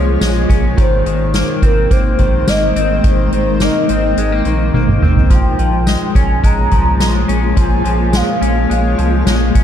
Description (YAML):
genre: dream pop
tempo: 106 BPM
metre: 4/4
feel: straight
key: unclear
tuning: A4 = 440 Hz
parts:
  - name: warm velvety synth lead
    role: melody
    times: 0.0-9.3 s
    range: Bb4 to Bb5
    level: -20 LUFS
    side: equal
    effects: chorus, tape echo
  - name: shimmering ambient pad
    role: sustained chords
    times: 0.0-9.6 s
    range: Ab3 to Db5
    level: -20 LUFS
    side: left 1 dB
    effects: chorus, built-in reverb
  - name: electric guitar at the edge of break-up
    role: arpeggios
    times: 0.0-9.6 s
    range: Eb3 to Db4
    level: -19 LUFS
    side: left 4 dB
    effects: analog chorus, tape echo
  - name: warm sub bass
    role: bass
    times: 0.0-9.6 s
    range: Ab1 to C2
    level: -17 LUFS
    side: equal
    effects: none
  - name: soft-mallet drum kit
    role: drums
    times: 0.2-9.6 s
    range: hi-hat, kick drum, snare drum, tambourine, toms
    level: -15 LUFS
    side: equal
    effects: none
room: light reverb, studio reverb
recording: dark, warm production, faint mains hum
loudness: -11 LUFS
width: side -9 dB against mid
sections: 0.0-9.6 A section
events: drum fill 4.7-5.3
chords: 0.0 Bbm7; 0.8 Abadd9; 5.3 Bbm7